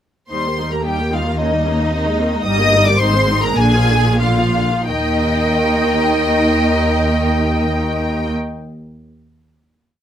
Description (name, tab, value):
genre	quick classical-period movement for string orchestra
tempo	86-113 BPM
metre	2/4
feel	rubato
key	Eb major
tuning	A4 = 441 Hz
part	rich studio violin section	melody	0.3-8.3 s	Eb5 to Eb6	-20 LUFS	left 2 dB	none
part	rich studio violin section	second line	0.3-8.3 s	Eb4 to Eb5	-21 LUFS	left 1 dB	none
part	rich studio viola section	accompaniment	0.3-8.3 s	D3 to G4	-21 LUFS	equal	none
part	warm studio cello section	bass	0.3-8.3 s	Eb2 to Bb2	-21 LUFS	right 1 dB	none
part	warm studio double bass section	bass	0.3-8.3 s	G1 to Eb2	-20 LUFS	equal	none
room	light reverb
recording	close, detailed microphones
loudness	-14 LUFS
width	side -10 dB against mid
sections	0.3-4.9 A section; 4.9-7.6 final chord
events	slowing down 1.9-4.9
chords	0.3 Eb; 1.4 Eb7; 1.9 Ab/Eb; 2.5 Eb/G; 3.0 Ab; 3.6 Bb7; 4.9 Eb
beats	| 0.31 0.86 | 1.40 1.93 | 2.46 3.00 | 3.58 4.21 | 4.89 5.56 | 6.22 6.90